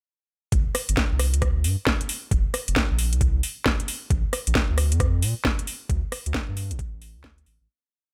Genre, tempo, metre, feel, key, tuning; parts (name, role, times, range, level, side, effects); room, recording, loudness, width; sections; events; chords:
UK garage, two-step garage; 134 BPM; 4/4; swing 63% on 16ths; G minor; A4 = 440 Hz
soft dub sub bass; bass; 0.5-7.7 s; F1 to Bb2; -26 LUFS; equal; sidechain pumping
electronic kick drum; drums; 0.5-7.4 s; -27 LUFS; equal; studio reverb
garage drum kit; drums; 0.5-7.6 s; hi-hat, rim click, snare drum; -28 LUFS; equal; studio reverb
little or no reverb; -24 LUFS; mono
0.5-7.7 drop
drop 0.5-7.7; fade-out 5.3-7.7